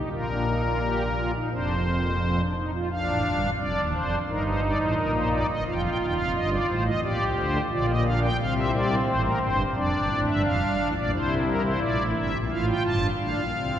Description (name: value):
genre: classical, baroque-style 3-part fugue for pipe organ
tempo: 87 BPM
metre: 4/4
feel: straight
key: Bb major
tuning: A4 = 440 Hz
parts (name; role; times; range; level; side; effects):
- pipe organ, strings celeste; solo; 0.0-13.8 s; Eb1 to A5; -23 LUFS; equal; none
room: wet cathedral reverb, RT60 5.5 s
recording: recorded in a church or concert hall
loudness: -23 LUFS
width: side -10 dB against mid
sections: 0.0-2.9 A section; 2.9-13.8 B section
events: none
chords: 0.1 Fsus4/Bb; 1.5 F5; 2.9 Bb; 4.3 Eb/G; 5.7 F7; 7.0 Bb; 8.4 F/C (rootless); 9.8 Bb/F; 11.1 C7; 12.5 F